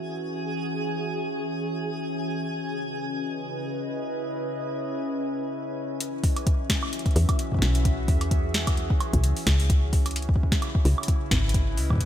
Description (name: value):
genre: IDM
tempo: 130 BPM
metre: 4/4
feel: swing 56% on 16ths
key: E major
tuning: A4 = 440 Hz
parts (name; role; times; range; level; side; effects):
- warbly tape-like pad; sustained chords; 0.0-12.1 s; C#3 to E5; -30 LUFS; equal; chorus, built-in reverb
- twinkling granular texture; texture; 0.0-6.0 s; G#4; -36 LUFS; right 2 dB; built-in reverb
- booming analog drum machine; drums; 6.0-12.1 s; hi-hat, snare drum, woodblock; -30 LUFS; right 1 dB; ping-pong delay
- electronic kick drum; drums; 6.2-12.0 s; none; -23 LUFS; equal; none
- woody FM bass; bass; 7.2-12.1 s; G#1 to E2; -24 LUFS; equal; none
room: light reverb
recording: bright 1980s-style digital production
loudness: -23 LUFS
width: side -11 dB against mid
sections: 0.0-6.0 A section; 6.0-12.1 B section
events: filter sweep on ambient pad 0.0-6.0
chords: 0.0 E6; 2.3 C#m9; 6.0 E6; 9.7 C#m9